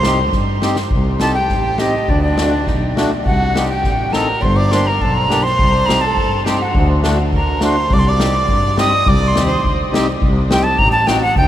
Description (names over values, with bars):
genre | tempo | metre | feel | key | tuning
klezmer | 103 BPM | 2/4 | straight | C dorian sharp4 | A4 = 440 Hz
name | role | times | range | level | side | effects
breathy bright concert flute | melody | 0.0-11.5 s | D5 to Eb6 | -18 LUFS | equal | none
rich violin | second line | 0.0-9.7 s | D4 to Eb5 | -23 LUFS | right 2 dB | none
accordion | accompaniment | 0.0-11.2 s | A3 to A4 | -22 LUFS | left 1 dB | none
warm double bass | bass | 0.0-11.5 s | G1 to G2 | -18 LUFS | equal | none
street-band drum kit | drums | 0.0-11.5 s | kick drum, snare drum | -20 LUFS | equal | none
room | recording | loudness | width
moderate huge ambient reverb, RT60 7.2 s | in a vast, echoing space | -13 LUFS | side -12 dB against mid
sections
0.9-10.2 A section; 10.2-11.5 B section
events
flute solo 0.9-10.2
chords
0.0 Cm; 2.1 D; 3.3 Cm; 4.4 Gm; 5.6 Cm; 6.8 D; 7.9 Cm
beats
0.33 | 0.92 1.50 | 2.09 2.67 | 3.26 3.84 | 4.42 5.01 | 5.59 6.17 | 6.75 7.33 | 7.91 8.49 | 9.06 9.64 | 10.21 10.79 | 11.36